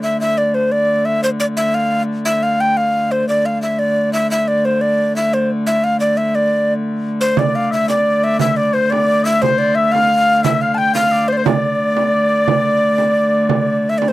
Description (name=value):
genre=medieval dance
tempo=117 BPM (dotted quarters)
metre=6/8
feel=straight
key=D minor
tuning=A4 = 440 Hz
part: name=breathy mellow tenor recorder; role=melody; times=0.0-14.1 s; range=C5 to A5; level=-15 LUFS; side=equal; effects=none
part: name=rich hurdy-gurdy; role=drone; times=0.0-14.1 s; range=D3 to A3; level=-20 LUFS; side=equal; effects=none
part: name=clear shawm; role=second line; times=7.2-13.8 s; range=C5 to G5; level=-21 LUFS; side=left 4 dB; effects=none
part: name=frame drum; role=percussion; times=7.4-14.1 s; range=none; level=-21 LUFS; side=right 8 dB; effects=none
room=moderate booth ambience, RT60 0.2 s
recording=dry, close 1970s-style studio recording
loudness=-14 LUFS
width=side -16 dB against mid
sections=0.0-7.4 A section; 7.4-14.1 A section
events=none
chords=none